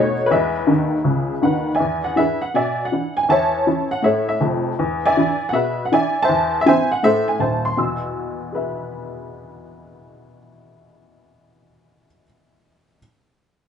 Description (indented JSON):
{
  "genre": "jazz, stride piano",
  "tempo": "161 BPM",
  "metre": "4/4",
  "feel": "swing 66% on 8ths",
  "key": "E major",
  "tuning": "A4 = 436 Hz",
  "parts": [
    { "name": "honky-tonk upright piano", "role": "solo", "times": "0.0-13.0 s", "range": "D#1 to E6", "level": "-17 LUFS", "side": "equal", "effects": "none" }
  ],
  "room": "wet studio ambience, RT60 0.5 s",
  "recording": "band playing live in one room, nothing above 11.0 kHz",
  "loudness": "-17 LUFS",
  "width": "side -8 dB against mid",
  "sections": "0.0-1.8 A section; 1.8-7.8 B section; 7.8-10.8 C section",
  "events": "honky-tonk piano fill 0.7-1.8",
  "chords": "0.3 E; 1.8 E7; 3.3 A/E; 4.8 E7; 6.3 Am/E; 7.8 E"
}